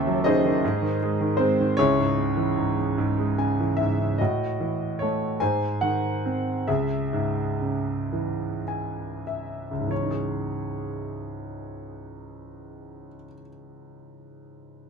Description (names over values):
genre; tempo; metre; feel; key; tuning
classical, lyrical solo piano; 30-53 BPM (dotted quarters); 6/8; rubato; C# minor; A4 = 440 Hz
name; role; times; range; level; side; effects
warm grand piano; solo; 0.0-14.9 s; C#2 to G#5; -24 LUFS; right 1 dB; none
room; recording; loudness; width
little or no reverb; close, detailed microphones; -23 LUFS; side -6 dB against mid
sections
0.0-4.2 A section; 4.2-9.9 B section; 9.9-13.9 C section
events
grand piano fill 3.0-4.2, 8.1-9.9; slowing down 4.2-9.9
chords
0.0 D#m7b5; 0.6 G#; 1.8 C#m; 4.2 F#m7/A; 5.4 G#; 6.7 C#m; 9.9 C#madd9